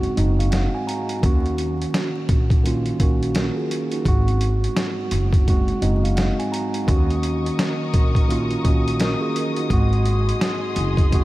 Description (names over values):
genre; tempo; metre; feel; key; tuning
hip hop, boom-bap hip-hop; 85 BPM; 4/4; swing 61% on 16ths; Eb dorian; A4 = 439 Hz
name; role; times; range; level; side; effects
mellow tine electric piano; accompaniment; 0.0-11.2 s; Ab2 to Bb5; -23 LUFS; right 2 dB; high-pass filter, low-pass filter
upright bass; bass; 0.0-11.2 s; Gb1 to Eb2; -22 LUFS; equal; none
boom bap sampler-style drum kit; drums; 0.0-11.2 s; hi-hat, kick drum, snare drum; -22 LUFS; equal; none
dark studio string section; sustained chords; 6.9-11.2 s; Ab4 to Eb6; -29 LUFS; left 4 dB; high-pass filter, low-pass filter
room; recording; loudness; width
light reverb; vinyl crackle; -18 LUFS; side -17 dB against mid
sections
0.0-11.2 A section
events
none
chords
0.0 Ab7; 1.2 Ebm7; 4.1 Ab7; 6.9 Ebm7; 9.7 Ab7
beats
0.53 | 1.23 1.94 2.64 3.35 | 4.06 4.76 5.47 6.17 | 6.88 7.58 8.29 9.00 | 9.70 10.41 11.12